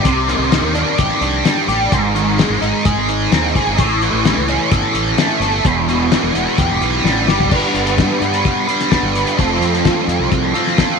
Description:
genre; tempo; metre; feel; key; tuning
psychedelic rock; 129 BPM; 4/4; straight; G mixolydian; A4 = 440 Hz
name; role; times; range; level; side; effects
biting overdriven guitar; riff; 0.0-11.0 s; E2 to B4; -15 LUFS; right 1 dB; flanger
fuzz fingered electric bass; bass; 0.0-10.5 s; E1 to Ab2; -21 LUFS; right 2 dB; overdrive
cloth-damped thuddy drum kit; drums; 0.1-10.9 s; crash cymbal, hi-hat, kick drum, snare drum, toms; -18 LUFS; left 4 dB; none
room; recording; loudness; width
moderate echo chamber reverb, RT60 1.4 s, studio reverb; 1960s-style stereo; -13 LUFS; side -5 dB against mid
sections
0.0-7.5 A section; 7.5-11.0 B section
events
drum fill 7.0-7.5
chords
0.1 Cmadd9; 1.9 Ab; 3.8 A; 5.6 Em; 7.5 G; 9.4 F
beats
| 0.05 0.52 0.98 1.45 | 1.92 2.38 2.85 3.32 | 3.78 4.25 4.72 5.18 | 5.65 6.12 6.58 7.05 | 7.52 7.98 8.45 8.92 | 9.38 9.85 10.32 10.79

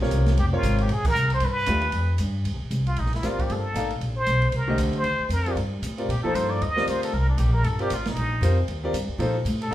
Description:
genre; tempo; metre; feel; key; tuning
modal jazz; 231 BPM; 4/4; swing 59% on 8ths; C dorian; A4 = 440 Hz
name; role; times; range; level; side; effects
clear concert grand piano; accompaniment; 0.0-9.7 s; C3 to F5; -28 LUFS; left 1 dB; none
upright bass; bass; 0.0-9.7 s; F1 to Bb2; -24 LUFS; equal; none
open jazz drum kit; drums; 0.0-9.7 s; crash cymbal, hi-hat, kick drum, ride cymbal, snare drum; -34 LUFS; right 2 dB; none
trumpet with plunger mute; melody; 0.4-9.7 s; D4 to Eb5; -27 LUFS; equal; none
room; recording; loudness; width
moderate large studio reverb, RT60 1.0 s; band playing live in one room; -21 LUFS; side -13 dB against mid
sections
0.0-2.5 A section; 2.5-9.7 B section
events
band accent 1.0; muted trumpet solo 2.5-9.7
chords
0.0 Bbm9; 1.4 G7; 2.5 Cm7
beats
0.12 | 0.38 0.64 0.90 1.16 | 1.42 1.68 1.94 2.20 | 2.46 2.72 2.98 3.24 | 3.50 3.75 4.01 4.28 | 4.54 4.79 5.05 5.31 | 5.57 5.83 6.09 6.35 | 6.61 6.87 7.13 7.39 | 7.65 7.91 8.17 8.43 | 8.69 8.95 9.21 9.47 | 9.73

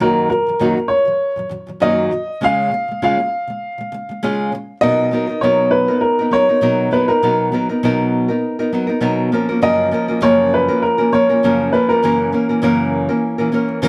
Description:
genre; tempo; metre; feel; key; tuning
pop; 100 BPM; 4/4; swing 55% on 16ths; unclear; A4 = 441 Hz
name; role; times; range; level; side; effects
warm upright piano; melody; 0.0-13.6 s; A#4 to E#5; -19 LUFS; equal; digital delay
nylon-string guitar; accompaniment; 0.0-13.9 s; F#2 to A#4; -20 LUFS; equal; none
room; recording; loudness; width
wet small room reverb, RT60 0.5 s; none; -16 LUFS; mono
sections
0.0-4.8 A section; 4.8-13.9 B section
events
none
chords
0.0 D#m/F#; 2.4 C#; 4.8 Bmaj7; 9.3 F#maj7; 12.0 F#7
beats
| 0.01 0.61 1.21 1.81 | 2.42 3.02 3.62 4.22 | 4.82 5.42 6.02 6.62 | 7.22 7.82 8.42 9.02 | 9.62 10.22 10.82 11.42 | 12.03 12.62 13.23 13.83

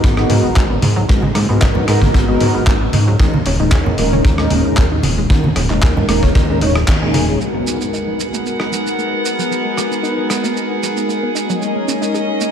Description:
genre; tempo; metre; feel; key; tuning
nu-disco, nu disco; 114 BPM; 4/4; swing 53% on 16ths; G# minor; A4 = 440 Hz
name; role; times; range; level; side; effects
mellow synth brass; accompaniment; 0.0-12.5 s; G#3 to C#5; -19 LUFS; equal; chorus, sidechain pumping, diffuse ambient delay
wide unison pluck; arpeggios; 0.0-12.5 s; F#3 to G#4; -25 LUFS; right 1 dB; sidechain pumping, ping-pong delay
fat analog bass; bass; 0.0-7.4 s; D#1 to G#2; -17 LUFS; equal; none
kick drum; drums; 0.0-7.0 s; none; -16 LUFS; equal; none
dusty soul sampler-style drum kit; drums; 0.2-12.5 s; handclaps, hi-hat, rim click, shaker; -23 LUFS; equal; overdrive
congas; percussion; 0.3-7.3 s; none; -22 LUFS; right 2 dB; none
warm chamber violin section; sustained chords; 7.4-12.5 s; B3 to F#5; -22 LUFS; right 1 dB; sidechain pumping, low-pass filter
room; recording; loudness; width
light reverb, small room ambience; none; -13 LUFS; side -8 dB against mid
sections
0.0-7.4 A section; 7.4-12.5 B section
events
band accent 6.9; filter sweep on synth arpeggio sound 7.4-12.5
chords
0.0 G#m9; 3.2 D#7sus4; 7.4 G#m9; 11.6 D#7sus4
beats
0.04 0.57 | 1.09 1.62 2.15 2.67 | 3.20 3.72 4.25 4.78 | 5.30 5.83 6.36 6.88 | 7.41 7.93 8.46 8.99 | 9.51 10.04 10.57 11.09 | 11.62 12.14

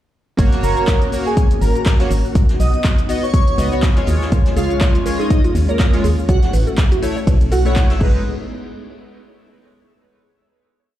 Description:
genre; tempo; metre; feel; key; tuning
deep house; 122 BPM; 4/4; swing 57% on 16ths; G# dorian; A4 = 440 Hz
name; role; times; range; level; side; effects
soft string machine; sustained chords; 0.4-8.2 s; G#3 to F#4; -26 LUFS; left 1 dB; ensemble chorus, sidechain pumping
chorused polysynth; stabs; 0.4-8.2 s; G#3 to E5; -24 LUFS; left 1 dB; cassette tape, sidechain pumping, tape echo
organ-like FM bass; bass; 0.4-8.2 s; F#1 to D#2; -17 LUFS; equal; sidechain pumping
deep house drum kit; drums; 0.4-8.1 s; crash cymbal, handclaps, hi-hat, shaker; -29 LUFS; equal; none
electronic kick drum; drums; 0.4-8.1 s; none; -15 LUFS; equal; none
vintage brush drum kit; drums; 0.4-8.0 s; hi-hat, snare drum; -34 LUFS; left 2 dB; sidechain pumping on hats, high-pass filter on hats, high-pass filter on snare, high-pass filter on room
airy dreamy lead; melody; 0.6-7.7 s; A#3 to D#5; -24 LUFS; right 2 dB; chorus, tape echo
mallet-like synth pluck; arpeggios; 4.3-8.2 s; E#4 to C#5; -28 LUFS; right 2 dB; chorus, sidechain pumping, tape echo
room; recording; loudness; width
little or no reverb; played on a big sound system in a bare room, large studio reverb; -14 LUFS; side -13 dB against mid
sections
0.4-8.3 drop; 8.3-10.2 final hit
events
drop 0.4-8.3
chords
0.4 G#9sus4; 2.4 C#9sus4; 4.1 D#9sus4; 6.3 B9sus4; 8.0 G#m; 8.3 N.C.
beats
| 0.39 0.88 1.37 1.86 | 2.35 2.85 3.34 3.83 | 4.32 4.81 5.30 5.80 | 6.29 6.78 7.27 7.76

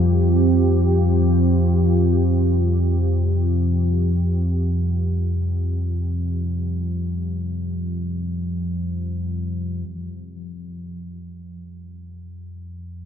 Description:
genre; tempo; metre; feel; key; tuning
dark ambient drone; free time; none; none; unclear; A4 = 440 Hz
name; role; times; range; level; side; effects
deep dark ambient pad; sustained chords; 0.0-9.9 s; C4 to G4; -25 LUFS; right 2 dB; chorus, built-in reverb
deep rumbling drone; drone; 0.0-13.1 s; F2 to F3; -20 LUFS; equal; built-in reverb, analog chorus
room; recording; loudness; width
wet huge ambient reverb, RT60 8.4 s; dreamy mix soaked in reverb; -18 LUFS; side -8 dB against mid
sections
0.0-9.9 A section; 9.9-13.1 B section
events
filter sweep on synth drone 9.9-13.1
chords
0.0 Fsus2; 9.9 N.C.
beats
free time

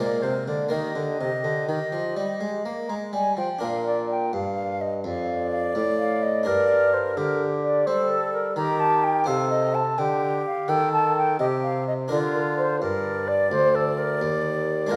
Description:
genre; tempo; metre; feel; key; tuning
classical, baroque-style sonata movement with continuo; 85 BPM (dotted quarters); 12/8; straight; Eb major, Bb major from 3.6 s; A4 = 440 Hz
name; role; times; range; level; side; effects
baroque flute; melody; 0.0-15.0 s; G4 to Bb5; -27 LUFS; equal; none
bright baroque flute; second line; 0.0-15.0 s; F4 to Eb5; -30 LUFS; equal; none
harpsichord; accompaniment; 0.0-15.0 s; D2 to C5; -34 LUFS; equal; none
mellow bassoon; bass; 0.0-15.0 s; D2 to Bb3; -30 LUFS; equal; none
room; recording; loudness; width
wet recital hall reverb, RT60 1.7 s; none; -24 LUFS; mono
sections
0.0-3.6 A section; 3.6-15.0 A section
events
none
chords
0.0 Bb7; 0.7 Eb; 3.6 Bb; 6.5 Gm; 9.3 Cm; 12.1 Bb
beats
| 0.72 1.45 2.17 2.89 | 3.62 4.34 5.05 5.75 | 6.46 7.17 7.87 8.57 | 9.28 9.99 10.69 11.40 | 12.11 12.81 13.51 14.21 | 14.91

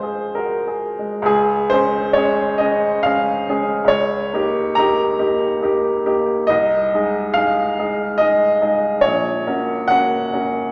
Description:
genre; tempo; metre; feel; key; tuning
classical, romantic character piece for solo piano; 70 BPM; 3/4; uneven beats, rubato; Db major; A4 = 440 Hz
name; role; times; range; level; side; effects
clear upright piano; solo; 0.0-10.7 s; Bb1 to Bb5; -18 LUFS; equal; none
room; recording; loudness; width
wet recital hall reverb, RT60 1.7 s; none; -18 LUFS; mono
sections
0.0-1.3 A section; 1.3-10.7 A section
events
none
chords
0.0 Db/F; 1.3 Db; 3.9 Eb7/Db; 6.5 Ab/C; 9.0 Gb/Bb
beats
0.34 | 1.28 2.16 3.06 | 3.92 4.78 5.63 | 6.50 7.37 8.19 | 9.03 9.90

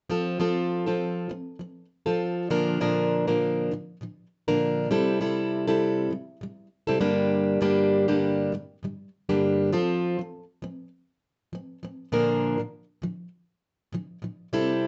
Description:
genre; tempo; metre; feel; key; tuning
pop; 100 BPM; 4/4; swing 55% on 16ths; F major; A4 = 441 Hz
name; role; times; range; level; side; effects
fingerpicked plugged-in steel-string acoustic guitar; accompaniment; 0.1-14.9 s; G2 to Bb4; -26 LUFS; equal; none
room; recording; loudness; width
moderate small room reverb, RT60 0.5 s; nothing above 8.0 kHz; -26 LUFS; mono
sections
0.1-9.7 A section; 9.7-14.9 B section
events
none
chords
0.1 F; 2.5 Bb; 4.9 C6; 7.0 Gm; 9.7 F; 12.1 Bb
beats
| 0.10 0.70 1.31 1.91 | 2.51 3.11 3.71 4.31 | 4.92 5.52 6.12 6.72 | 7.32 7.92 8.52 9.13 | 9.73 10.33 10.93 11.53 | 12.13 12.73 13.34 13.94 | 14.54

